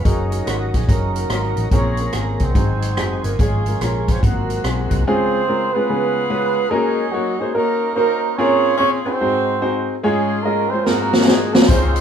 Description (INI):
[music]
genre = uptempo gospel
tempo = 144 BPM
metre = 4/4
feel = swing 65% on 8ths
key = Db major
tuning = A4 = 440 Hz
[part]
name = mellow horn section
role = melody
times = 0.0-12.0 s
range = Gb3 to Db5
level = -20 LUFS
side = right 3 dB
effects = none
[part]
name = warm concert grand piano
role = accompaniment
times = 0.0-12.0 s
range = Ab2 to Eb5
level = -22 LUFS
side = left 2 dB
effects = none
[part]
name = tonewheel organ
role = sustained chords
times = 0.0-5.0, 11.7-12.0 s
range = Eb3 to Bb4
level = -28 LUFS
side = right 1 dB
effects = slow rotary speaker, chorus vibrato
[part]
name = hollow-body short-scale fingered electric bass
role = bass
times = 0.0-5.0, 11.7-12.0 s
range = Gb1 to Db2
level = -22 LUFS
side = equal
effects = none
[part]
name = swinging big-band drum kit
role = drums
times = 0.1-5.0, 10.9-12.0 s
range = hi-hat, kick drum, rim click, snare drum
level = -17 LUFS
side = equal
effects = none
[part]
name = tambourine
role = percussion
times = 11.7-12.0 s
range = none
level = -37 LUFS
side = left 5 dB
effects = none
[sound]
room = moderate large studio reverb, RT60 0.9 s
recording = band playing live in one room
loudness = -16 LUFS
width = side -8 dB against mid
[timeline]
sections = 0.0-5.1 A section; 5.1-12.0 B section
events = drum fill 10.9-11.7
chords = 0.1 Gb6; 1.7 Bbm9; 2.6 Ab7; 3.4 Db/Ab; 4.2 Ab13; 5.1 Dbmaj7; 5.9 Db7; 6.7 Gb6; 8.4 Bbm9; 9.2 Ab7; 10.0 Db/Ab; 10.9 Ab13